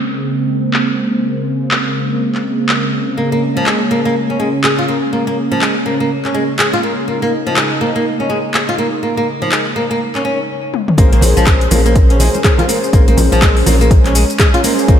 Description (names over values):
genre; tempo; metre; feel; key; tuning
afro house; 123 BPM; 4/4; swing 60% on 16ths; Bb minor; A4 = 440 Hz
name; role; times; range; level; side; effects
warm analog pad; sustained chords; 0.0-15.0 s; Db3 to Eb4; -18 LUFS; right 1 dB; chorus, sidechain pumping
deep house drum kit; drums; 0.7-15.0 s; handclaps, hi-hat, rim click, shaker, toms; -18 LUFS; left 1 dB; overdrive, low-pass filter on snare, studio reverb, low-pass filter on toms, low-pass filter on hats, low-pass filter on perc
flamenco guitar; arpeggios; 3.2-15.0 s; F3 to Ab4; -17 LUFS; left 1 dB; sidechain pumping, analog delay
mellow synth brass; stabs; 11.0-15.0 s; Db4 to Db5; -19 LUFS; left 1 dB; chorus, cassette tape, sidechain pumping, analog delay
warm sub bass; bass; 11.0-15.0 s; Bb1; -14 LUFS; equal; sidechain pumping
electronic kick drum; drums; 11.0-15.0 s; none; -11 LUFS; equal; overdrive, studio reverb
congas; percussion; 11.0-15.0 s; none; -21 LUFS; right 2 dB; none
room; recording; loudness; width
moderate lush hall reverb, RT60 1.9 s; dreamy mix soaked in reverb; -12 LUFS; side -9 dB against mid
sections
0.0-11.0 A section; 11.0-15.0 B section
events
filter sweep on analog synth pad 0.0-11.0; drum fill 10.7; drop 11.0-15.0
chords
0.0 Bbm9